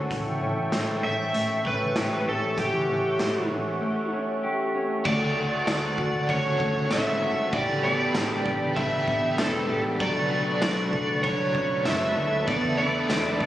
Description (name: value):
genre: dream pop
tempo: 97 BPM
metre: 4/4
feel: straight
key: D major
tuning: A4 = 439 Hz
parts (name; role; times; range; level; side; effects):
- warm analog pad; sustained chords; 0.0-13.5 s; A4 to C#6; -31 LUFS; equal; chorus
- mellow electric guitar; arpeggios; 0.0-13.5 s; E3 to A4; -29 LUFS; left 1 dB; wide subtle chorus, tape echo
- vintage muted picked electric bass; bass; 0.0-13.5 s; E1 to E2; -34 LUFS; equal; none
- raw garage drum kit; drums; 0.1-13.5 s; crash cymbal, hi-hat, kick drum, ride cymbal, snare drum, tambourine; -31 LUFS; equal; none
- overdriven slide guitar; melody; 1.0-13.5 s; G4 to E5; -27 LUFS; right 1 dB; tape echo
- biting overdriven guitar; accompaniment; 5.0-13.5 s; E2 to C#5; -33 LUFS; right 2 dB; tremolo, wide subtle chorus
room: light reverb, small room ambience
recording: recorded on a phone in the room, studio reverb, compression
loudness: -23 LUFS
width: side -13 dB against mid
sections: 0.0-5.1 A section; 5.1-13.5 B section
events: none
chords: 0.1 A7; 5.1 Dmaj7; 7.5 A9sus4; 10.0 Bm9; 12.5 E7sus4